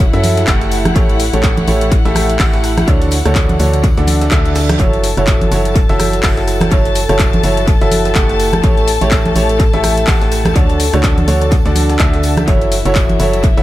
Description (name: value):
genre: piano house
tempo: 125 BPM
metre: 4/4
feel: swing 57% on 16ths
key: F# minor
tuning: A4 = 440 Hz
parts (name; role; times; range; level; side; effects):
- dark chamber string section; sustained chords; 0.0-13.6 s; E4 to A5; -21 LUFS; left 2 dB; sidechain pumping
- organ-like FM bass; bass; 0.0-13.6 s; F#1 to F#2; -17 LUFS; equal; sidechain pumping
- breakbeat sampler-style drum kit; drums; 0.0-13.6 s; hi-hat, snare drum, tambourine; -30 LUFS; equal; none
- electronic kick drum; drums; 0.0-13.5 s; none; -13 LUFS; equal; none
- house drum kit; drums; 0.0-13.6 s; handclaps, hi-hat, rim click; -21 LUFS; left 1 dB; tape echo
- clear baby grand piano; riff; 0.1-13.6 s; D3 to F#5; -17 LUFS; right 1 dB; vintage 12-bit sampler grit, sidechain pumping, tape echo
- tambourine and congas; percussion; 0.1-13.6 s; none; -22 LUFS; right 1 dB; tape echo
- reverse cymbal; sound effects; 4.3-4.8 s; none; -28 LUFS; right 5 dB; none
room: light reverb, digital ambience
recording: echo-heavy mix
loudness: -10 LUFS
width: side -15 dB against mid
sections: 0.0-13.6 A section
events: reverse cymbal 4.3-4.8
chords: 0.0 F#m7; 2.9 Dmaj7; 4.8 F#m7; 10.6 Dmaj7; 12.5 F#m7